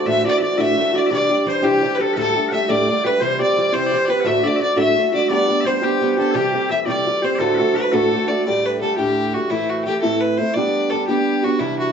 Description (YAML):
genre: celtic folk, Celtic jig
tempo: 114 BPM (dotted quarters)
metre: 6/8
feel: straight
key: D mixolydian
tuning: A4 = 440 Hz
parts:
  - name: clear fiddle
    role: melody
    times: 0.0-11.9 s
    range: E4 to E5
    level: -20 LUFS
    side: left 1 dB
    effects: none
  - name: concert harp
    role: second line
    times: 0.0-10.1 s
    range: G4 to E5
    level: -26 LUFS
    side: right 2 dB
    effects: none
  - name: loud bright bagpipes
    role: second line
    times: 0.0-8.4 s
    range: G4 to F#5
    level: -26 LUFS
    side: left 2 dB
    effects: none
  - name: picked old ladder-braced acoustic guitar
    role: accompaniment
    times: 0.0-11.9 s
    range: D2 to G4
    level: -19 LUFS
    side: right 1 dB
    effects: none
room: wet small room ambience, RT60 0.5 s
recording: heard from further back in the room, nothing above 7.7 kHz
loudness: -16 LUFS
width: side -7 dB against mid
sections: 0.1-8.5 A section; 8.5-11.9 B section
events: none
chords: 0.1 Dadd9; 1.1 Cadd9; 2.2 Dsus4; 3.2 C; 4.3 D; 5.3 G; 6.4 C; 7.4 D; 8.5 Dsus4; 9.5 Am; 10.6 G